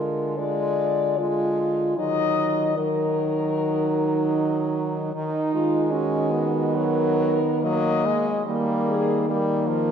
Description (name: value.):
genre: classical, lyrical piece for horn quartet.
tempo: 75 BPM.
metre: 4/4.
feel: rubato.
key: Eb minor.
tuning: A4 = 440 Hz.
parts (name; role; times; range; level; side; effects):
mellow French horn; melody; 0.0-9.9 s; E#4 to D#5; -25 LUFS; left 5 dB; none.
warm French horn; second line; 0.0-9.9 s; A#3 to F4; -27 LUFS; right 6 dB; none.
warm French horn; accompaniment; 0.0-9.9 s; D#3 to Ab3; -28 LUFS; left 1 dB; none.
mellow French horn; bass; 0.0-9.9 s; D3 to D#3; -27 LUFS; right 1 dB; none.
room: wet church reverb, RT60 3.3 s.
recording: dark, warm production.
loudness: -21 LUFS.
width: side -8 dB against mid.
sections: 0.0-9.9 A section.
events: none.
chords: 0.0 Bb7/D (rootless); 2.0 Ebm; 5.2 D#m; 8.5 D#.